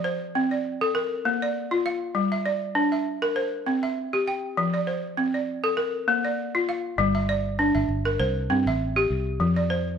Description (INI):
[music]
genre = west african traditional, West African string and xylophone music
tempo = 100 BPM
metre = 4/4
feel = swing 54% on 16ths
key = G dorian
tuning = A4 = 440 Hz
[part]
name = balafon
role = arpeggios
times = 0.0-10.0 s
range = F3 to G5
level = -23 LUFS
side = equal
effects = none
[part]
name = fingered electric bass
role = bass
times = 7.0-10.0 s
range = G1 to G2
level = -27 LUFS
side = equal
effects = none
[sound]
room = moderate recital hall reverb, RT60 1.5 s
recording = none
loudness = -23 LUFS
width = side -7 dB against mid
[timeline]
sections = 0.0-7.0 A section; 7.0-10.0 A section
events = none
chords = 0.0 F (rootless); 0.9 Bb; 2.2 G5; 3.4 C; 4.6 F5; 5.8 Bb; 7.0 G5; 8.2 C; 9.4 F5